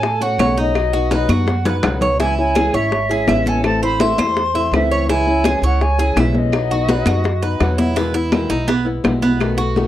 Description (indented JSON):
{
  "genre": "latin, Cuban son and guajira",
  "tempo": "166 BPM",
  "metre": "4/4",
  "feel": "straight",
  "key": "E major",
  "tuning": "A4 = 440 Hz",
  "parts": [
    { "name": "silver concert flute", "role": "melody", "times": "0.0-7.6 s", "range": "D#5 to C6", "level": "-21 LUFS", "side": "equal", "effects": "none" },
    { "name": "flamenco guitar", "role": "accompaniment", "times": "0.0-9.9 s", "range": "B2 to F#4", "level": "-22 LUFS", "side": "left 3 dB", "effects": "none" },
    { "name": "Cuban tres", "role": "arpeggios", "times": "0.0-9.9 s", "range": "B3 to E5", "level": "-22 LUFS", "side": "right 4 dB", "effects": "none" },
    { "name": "upright bass", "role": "bass", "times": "0.0-9.9 s", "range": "G#1 to A2", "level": "-20 LUFS", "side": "right 1 dB", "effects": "none" },
    { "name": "bongos", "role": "percussion", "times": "0.0-9.9 s", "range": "none", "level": "-24 LUFS", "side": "left 5 dB", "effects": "none" },
    { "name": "congas", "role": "percussion", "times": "0.0-9.9 s", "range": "none", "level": "-22 LUFS", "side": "left 2 dB", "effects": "none" },
    { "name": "claves", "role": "percussion", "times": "0.4-9.6 s", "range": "none", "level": "-28 LUFS", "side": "right 11 dB", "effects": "none" }
  ],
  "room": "light reverb",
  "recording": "dry, close 1970s-style studio recording",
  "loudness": "-14 LUFS",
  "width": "side -12 dB against mid",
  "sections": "0.0-8.0 A section; 8.0-9.9 B section",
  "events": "drum fill 1.3-2.2",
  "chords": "0.0 F#m; 0.8 B; 2.2 C#m; 3.6 Am; 5.1 C#m; 6.5 B; 8.0 Emaj7"
}